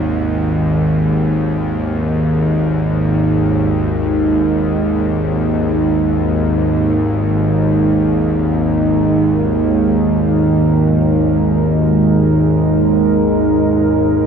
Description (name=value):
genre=dark ambient drone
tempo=free time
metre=none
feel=none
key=unclear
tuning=A4 = 440 Hz
part: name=bowed-like drone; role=drone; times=0.0-14.3 s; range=G#1 to D#2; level=-15 LUFS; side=equal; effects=built-in reverb
part: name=deep dark ambient pad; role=sustained chords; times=2.5-14.3 s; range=G#3 to A#4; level=-16 LUFS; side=right 2 dB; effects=chorus, built-in reverb
room=wet cathedral reverb, RT60 6.0 s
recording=none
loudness=-12 LUFS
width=side -7 dB against mid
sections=0.0-14.3 A section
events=none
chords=0.0 G#5